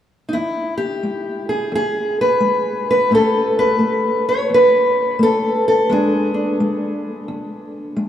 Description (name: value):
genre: acoustic country blues, solo or duo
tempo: 87 BPM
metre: 4/4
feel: swing 64% on 8ths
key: E mixolydian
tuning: A4 = 443 Hz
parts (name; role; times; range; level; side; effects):
- fingerpicked steel-string acoustic guitar; solo; 0.3-8.1 s; E2 to C#5; -15 LUFS; equal; none
room: wet cathedral reverb, RT60 5.6 s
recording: in a vast, echoing space, small room ambience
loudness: -15 LUFS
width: side -10 dB against mid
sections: 0.3-8.1 A section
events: none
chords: 0.3 E; 3.1 A7; 5.9 E7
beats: | 0.34 1.03 1.73 2.42 | 3.12 3.81 4.50 5.19 | 5.88 6.57 7.26 7.95